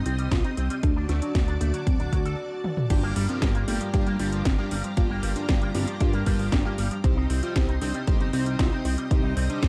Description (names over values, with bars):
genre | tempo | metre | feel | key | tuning
italo disco | 116 BPM | 4/4 | straight | G minor | A4 = 440 Hz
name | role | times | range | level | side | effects
soft octave-layered synth lead | melody | 0.0-9.7 s | D3 to G4 | -34 LUFS | equal | chorus, cassette tape, tape echo, shimmer reverb
string machine, full ensemble | sustained chords | 0.0-9.7 s | F#4 to Eb6 | -39 LUFS | equal | ensemble chorus, shimmer reverb
electric guitar with an envelope filter | arpeggios | 0.0-9.6 s | F3 to A4 | -39 LUFS | equal | ensemble chorus, tape echo, shimmer reverb
chorused synth bass | bass | 0.0-9.7 s | D1 to G2 | -30 LUFS | equal | tube saturation
house drum kit | drums | 0.1-9.7 s | crash cymbal, hi-hat, snare drum, toms | -35 LUFS | equal | none
electronic kick drum | drums | 0.3-9.7 s | none | -26 LUFS | equal | none
chorused polysynth | stabs | 2.9-9.7 s | G2 to C5 | -36 LUFS | equal | shimmer reverb
room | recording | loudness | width
light reverb, digital ambience | dark, warm production | -25 LUFS | mono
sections
0.0-2.9 A section; 2.9-9.7 B section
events
break 2.4-2.9; drum fill 2.6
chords
0.0 Cm; 0.8 D; 2.9 Gm7; 7.0 Cm